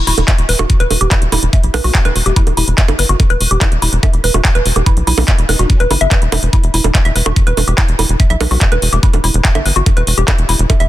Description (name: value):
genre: psychedelic trance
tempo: 144 BPM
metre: 4/4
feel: straight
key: E harmonic minor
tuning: A4 = 437 Hz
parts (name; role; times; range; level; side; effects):
- tight sequencer bass; bass; 0.0-10.9 s; E1 to B1; -14 LUFS; equal; none
- woody wave-folded pluck; riff; 0.1-10.8 s; E4 to E5; -19 LUFS; moving between left 5 dB and right 5 dB; chorus, auto-pan, sidechain pumping, tape echo
- drum and bass drum kit; drums; 0.1-10.9 s; bongos, handclaps, hi-hat; -17 LUFS; right 2 dB; none
- electronic kick drum; drums; 0.3-10.8 s; none; -12 LUFS; equal; none
- formant-sweep wobble bass; second line; 1.8-2.4, 5.2-5.8, 8.5-9.1 s; A3 to D#4; -31 LUFS; left 4 dB; none
room: little or no reverb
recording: dense, heavily limited modern master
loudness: -10 LUFS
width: side -14 dB against mid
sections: 0.0-10.9 A section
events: none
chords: 0.0 E5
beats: 0.28 0.70 1.11 | 1.53 1.95 2.36 2.78 | 3.20 3.61 4.03 4.45 | 4.86 5.28 5.70 6.11 | 6.53 6.95 7.36 7.78 | 8.20 8.61 9.03 9.45 | 9.86 10.28 10.70